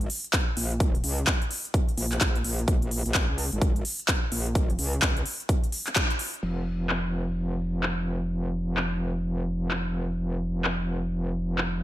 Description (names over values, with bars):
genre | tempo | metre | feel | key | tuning
bass house | 128 BPM | 4/4 | swing 62% on 16ths | unclear | A4 = 437 Hz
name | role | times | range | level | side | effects
metallic wobble bass | bass | 0.0-11.8 s | F1 to Db2 | -28 LUFS | equal | chorus, overdrive, sidechain pumping
big-room dance drum kit | drums | 0.0-11.7 s | crash cymbal, handclaps, hi-hat | -28 LUFS | equal | low-pass filter on hats, low-pass filter on snare, low-pass filter on cymbals, low-pass filter on room
electronic kick drum | drums | 0.3-6.1 s | none | -25 LUFS | equal | none
room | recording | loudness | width
little or no reverb | none | -24 LUFS | side -14 dB against mid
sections
0.0-6.4 A section; 6.4-11.8 B section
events
band accent 6.0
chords
none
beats
0.33 | 0.80 1.27 1.74 2.21 | 2.68 3.15 3.62 4.08 | 4.55 5.02 5.49 5.96 | 6.43 6.90 7.37 7.83 | 8.30 8.77 9.24 9.71 | 10.18 10.65 11.12 11.58